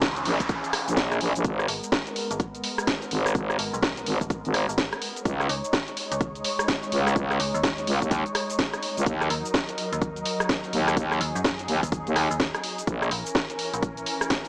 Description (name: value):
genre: bass house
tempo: 126 BPM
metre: 4/4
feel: swing 62% on 16ths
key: G# minor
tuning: A4 = 441 Hz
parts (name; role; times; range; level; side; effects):
- bright symphonic string section; sustained chords; 0.0-14.5 s; E3 to C#5; -32 LUFS; equal; sidechain pumping, low-pass filter
- metallic FM bass; bass; 0.0-14.0 s; G#1 to F#2; -33 LUFS; equal; overdrive, sidechain pumping
- electronic kick drum; drums; 0.0-14.4 s; none; -28 LUFS; equal; none
- house drum kit; drums; 0.0-14.5 s; hi-hat, rim click, shaker, snare drum; -27 LUFS; equal; none
- noise sweep; sound effects; 0.0-1.4 s; none; -31 LUFS; right 1 dB; none
- growling FM bass; bass; 0.3-13.1 s; G#1 to D#2; -24 LUFS; equal; overdrive, sidechain pumping
room: light reverb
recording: small speaker sound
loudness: -23 LUFS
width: side -29 dB against mid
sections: 0.0-14.5 A section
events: noise sweep 0.0-1.4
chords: 0.0 A#dim; 1.4 G#madd9; 5.3 C#sus2; 9.1 D#m; 12.9 A#dim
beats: 0.02 0.49 0.97 | 1.45 1.92 2.40 2.87 | 3.35 3.83 4.30 4.78 | 5.25 5.73 6.21 6.68 | 7.16 7.64 8.11 8.59 | 9.06 9.54 10.02 10.49 | 10.97 11.45 11.92 12.40 | 12.87 13.35 13.83 14.30